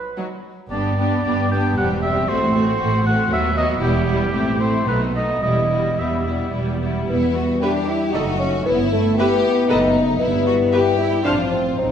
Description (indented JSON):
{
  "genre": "quick classical-period movement for symphony orchestra",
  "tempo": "107-121 BPM",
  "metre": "3/4",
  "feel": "rubato",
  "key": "E minor",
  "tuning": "A4 = 440 Hz",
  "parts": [
    { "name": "warm oboe", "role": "second line", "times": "0.0-6.5 s", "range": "G4 to G5", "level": "-23 LUFS", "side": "right 1 dB", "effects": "none" },
    { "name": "rich chamber violin section", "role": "melody", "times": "0.2-11.3 s", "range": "D#4 to A5", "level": "-30 LUFS", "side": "left 4 dB", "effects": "none" },
    { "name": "rich chamber violin section", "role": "second line", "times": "0.2-11.9 s", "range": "B3 to G4", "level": "-26 LUFS", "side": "left 4 dB", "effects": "none" },
    { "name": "rich symphonic viola section", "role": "accompaniment", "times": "0.2-11.3 s", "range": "F#3 to F5", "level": "-26 LUFS", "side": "right 1 dB", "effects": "none" },
    { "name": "rich chamber double bass section", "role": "bass", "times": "0.7-11.9 s", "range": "E1 to E2", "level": "-24 LUFS", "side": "right 2 dB", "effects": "none" },
    { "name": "rich symphonic cello section", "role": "bass", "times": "0.7-11.9 s", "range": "D#2 to E4", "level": "-24 LUFS", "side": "right 2 dB", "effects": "none" },
    { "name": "mellow bassoon", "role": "accompaniment", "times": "7.1-11.9 s", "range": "A3 to E4", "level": "-21 LUFS", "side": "left 2 dB", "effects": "none" },
    { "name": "dark French horn section", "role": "sustained chords", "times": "7.1-11.9 s", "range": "F3 to E4", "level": "-25 LUFS", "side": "left 4 dB", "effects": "none" }
  ],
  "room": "wet scoring stage reverb, RT60 1.5 s",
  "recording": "heard from further back in the room, nothing above 10.3 kHz",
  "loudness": "-17 LUFS",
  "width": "side -8 dB against mid",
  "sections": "0.0-7.1 A section; 7.1-11.9 A section",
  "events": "none",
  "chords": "0.0 B5; 0.7 G; 1.8 C/E; 2.3 F#dim/A; 3.3 B/D#; 3.8 Em; 4.3 Am; 4.9 B7; 5.4 Em; 8.1 D#dim/F#; 8.7 Em/G; 9.7 B7/F#; 10.2 Em/G; 11.3 F/A",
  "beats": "0.17 | 0.71 1.25 1.77 | 2.29 2.80 3.31 | 3.81 4.33 4.87 | 5.43 5.99 6.54 | 7.10 7.63 8.15 | 8.67 9.19 9.70 | 10.21 10.73 11.25 | 11.80"
}